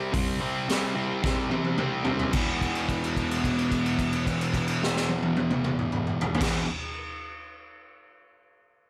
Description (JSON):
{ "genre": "garage rock duo or trio", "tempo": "109 BPM", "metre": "4/4", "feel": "straight", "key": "E minor", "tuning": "A4 = 439 Hz", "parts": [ { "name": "fuzz guitar", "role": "riff", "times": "0.0-6.7 s", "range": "E2 to C4", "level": "-29 LUFS", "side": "equal", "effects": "distortion" }, { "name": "raw garage drum kit", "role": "drums", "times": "0.1-6.5 s", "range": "crash cymbal, hi-hat, kick drum, snare drum, toms", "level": "-31 LUFS", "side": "equal", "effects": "none" } ], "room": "moderate studio reverb, RT60 0.7 s", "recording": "none", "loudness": "-27 LUFS", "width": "mono", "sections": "0.0-2.3 A section; 2.3-6.7 B section", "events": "drum fill 1.2-2.3; held note 2.3-6.4", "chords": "0.0 C5; 2.3 E5" }